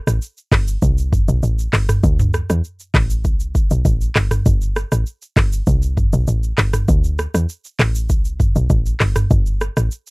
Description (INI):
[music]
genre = afrobeats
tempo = 99 BPM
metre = 4/4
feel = straight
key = unclear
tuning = A4 = 441 Hz
[part]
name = woody log drum bass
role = bass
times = 0.1-9.9 s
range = G1 to E2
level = -18 LUFS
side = equal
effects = none
[part]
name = afro-pop drum kit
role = drums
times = 0.1-10.1 s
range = handclaps, hi-hat, kick drum, rim click, shaker, toms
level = -17 LUFS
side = equal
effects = overdrive
[sound]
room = little or no reverb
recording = dark, warm production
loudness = -15 LUFS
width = side -29 dB against mid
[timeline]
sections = 0.0-10.1 A section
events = none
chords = none